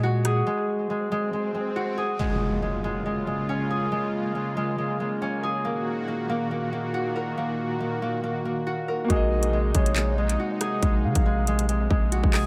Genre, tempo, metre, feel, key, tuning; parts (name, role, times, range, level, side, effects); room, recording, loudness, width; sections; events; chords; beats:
hip hop, drill; 139 BPM; 4/4; half-time; Bb minor; A4 = 440 Hz
concert harp; arpeggios; 0.0-12.5 s; Ab3 to Bb4; -30 LUFS; equal; tape echo
long sustained 808-style bass; bass; 0.0-0.4, 9.1-12.5 s; Bb1 to Db3; -27 LUFS; equal
drill drum kit; drums; 0.2-0.4, 9.1-12.4 s; handclaps, hi-hat, kick drum, rim click; -27 LUFS; equal
swell and impact; sound effects; 1.0-3.9 s; -36 LUFS; equal
warm analog pad; sustained chords; 2.2-12.5 s; Bb2 to Gb4; -33 LUFS; equal; chorus, tremolo
warm concert grand piano; accompaniment; 9.0-12.5 s; Bb3 to Eb5; -35 LUFS; equal
gliding portamento lead; second line; 9.1-11.7 s; Db5 to F5; -35 LUFS; equal; chorus, tape echo
little or no reverb; echo-heavy mix; -26 LUFS; mono
0.0-2.2 A section; 2.2-12.5 B section
break 0.0-2.2; swell 1.0-2.2; impact 2.2-3.9
0.0 Ab7sus2; 2.2 Bbm7; 5.6 Ebm/Bb; 9.1 Ab7/Bb
0.04 | 0.47 0.90 1.33 1.76 | 2.19 2.62 3.06 3.49 | 3.92 4.35 4.78 5.21 | 5.65 6.08 6.51 6.94 | 7.37 7.80 8.24 8.67 | 9.10 9.53 9.96 10.39 | 10.83 11.26 11.69 12.12